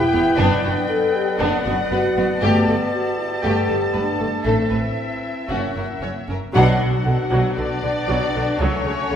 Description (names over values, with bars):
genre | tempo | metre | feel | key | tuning
cinematic | 117 BPM | 4/4 | straight | unclear | A4 = 445 Hz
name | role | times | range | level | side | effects
warm symphonic violin section | melody | 0.0-9.2 s | C#5 to A5 | -26 LUFS | left 3 dB | none
dark French horn section | sustained chords | 0.0-9.2 s | A#3 to B4 | -24 LUFS | left 1 dB | none
warm woodwind section | sustained chords | 0.0-9.2 s | F#3 to F#5 | -25 LUFS | left 1 dB | none
warm symphonic violin section | second line | 0.1-9.2 s | A3 to C#5 | -27 LUFS | left 2 dB | none
warm symphonic viola section | accompaniment | 0.1-9.2 s | C#3 to C#4 | -26 LUFS | right 2 dB | none
rich symphonic cello section | bass | 0.1-9.2 s | E2 to C#3 | -26 LUFS | right 1 dB | none
rich symphonic double bass section | bass | 0.1-9.2 s | E1 to C#2 | -25 LUFS | right 2 dB | none
timpani | percussion | 6.6-7.3 s | none | barely audible | none | none
room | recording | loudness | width
wet recital hall reverb, RT60 1.4 s | recorded in a church or concert hall | -17 LUFS | side -8 dB against mid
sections
0.0-6.6 A section; 6.6-9.2 B section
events
band accent 6.6-7.1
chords
0.4 Bm/F#; 2.4 Gadd9; 4.5 Amadd9; 5.5 F#7; 6.6 Bm; 8.6 F#m